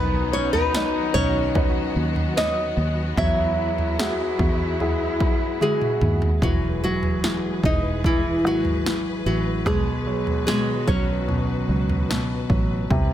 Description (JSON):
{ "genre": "pop ballad", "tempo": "74 BPM", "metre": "4/4", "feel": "straight", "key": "E major", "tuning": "A4 = 442 Hz", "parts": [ { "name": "nylon-string guitar", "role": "melody", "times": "0.0-12.5 s", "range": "E3 to E5", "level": "-25 LUFS", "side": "right 1 dB", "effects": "none" }, { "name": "mellow French horn section", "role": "second line", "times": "0.0-6.4 s", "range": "D#4 to F#4", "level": "-29 LUFS", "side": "left 8 dB", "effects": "none" }, { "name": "clear baby grand piano", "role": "accompaniment", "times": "0.0-13.1 s", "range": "B2 to D#5", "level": "-28 LUFS", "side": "equal", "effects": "none" }, { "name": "warm studio string section", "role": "sustained chords", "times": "0.0-13.1 s", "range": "C3 to B4", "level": "-31 LUFS", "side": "equal", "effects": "none" }, { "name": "fingered electric bass", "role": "bass", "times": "0.0-13.1 s", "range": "E1 to F#2", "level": "-27 LUFS", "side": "equal", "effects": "none" }, { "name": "deep house drum kit", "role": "drums", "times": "0.5-13.1 s", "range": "kick drum, snare drum, toms", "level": "-24 LUFS", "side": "right 1 dB", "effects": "none" } ], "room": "little or no reverb", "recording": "none", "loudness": "-20 LUFS", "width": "side -11 dB against mid", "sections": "0.0-6.4 A section; 6.4-13.1 B section", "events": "drum fill 5.6-6.4", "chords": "0.0 Badd9; 3.2 Eadd9; 6.4 E; 9.7 B" }